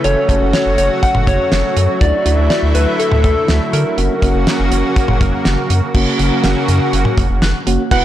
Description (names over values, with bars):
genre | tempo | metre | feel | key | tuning
synth-pop | 122 BPM | 4/4 | straight | unclear | A4 = 440 Hz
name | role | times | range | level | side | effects
soft struck synth lead | melody | 0.0-5.4 s | A4 to F#5 | -18 LUFS | left 2 dB | chorus, tape echo
mellow FM electric piano | accompaniment | 0.0-8.0 s | A#3 to B4 | -22 LUFS | right 1 dB | chorus
lush unison pad | sustained chords | 0.0-7.9 s | C#3 to F#4 | -18 LUFS | right 1 dB | chorus
round analog bass | bass | 0.0-8.0 s | E1 to D3 | -16 LUFS | equal | none
damped 70s drum kit | drums | 0.0-8.0 s | crash cymbal, hi-hat, kick drum, snare drum, toms | -18 LUFS | equal | none
soft round pluck | arpeggios | 5.9-7.8 s | C#3 to F#6 | -23 LUFS | equal | chorus, tape echo
analog pluck | second line | 7.9-8.0 s | F#5 | -14 LUFS | right 8 dB | chorus
room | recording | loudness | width
moderate plate reverb, RT60 1.9 s, small room ambience | blown-out, overdriven recording, overdrive | -12 LUFS | side -12 dB against mid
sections
0.0-5.9 A section; 5.9-7.9 B section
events
none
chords
0.0 F#m; 2.0 Dadd9; 4.0 F#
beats
| 0.04 0.54 1.03 1.52 | 2.01 2.50 3.00 3.49 | 3.98 4.47 4.96 5.45 | 5.95 6.44 6.93 7.42 | 7.91